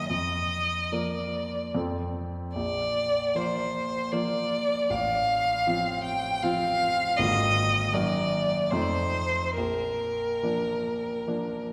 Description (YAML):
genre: classical, romantic duo for violin and grand piano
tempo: 68-80 BPM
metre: 3/4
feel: rubato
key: Bb major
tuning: A4 = 440 Hz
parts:
  - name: clear violin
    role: melody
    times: 0.0-11.7 s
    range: Bb4 to G5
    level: -29 LUFS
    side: equal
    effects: none
  - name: clear concert grand piano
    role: accompaniment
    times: 0.0-11.7 s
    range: Ab1 to Bb4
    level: -32 LUFS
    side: equal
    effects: none
room: wet concert hall reverb, RT60 2.2 s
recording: recorded in a church or concert hall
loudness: -27 LUFS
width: mono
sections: 0.0-11.7 A section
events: none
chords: 0.1 Bb/F; 1.7 F; 2.6 Bb; 4.9 F/A; 7.2 Bb7/Ab; 7.9 Ebm/Gb; 8.7 F7; 9.6 Bb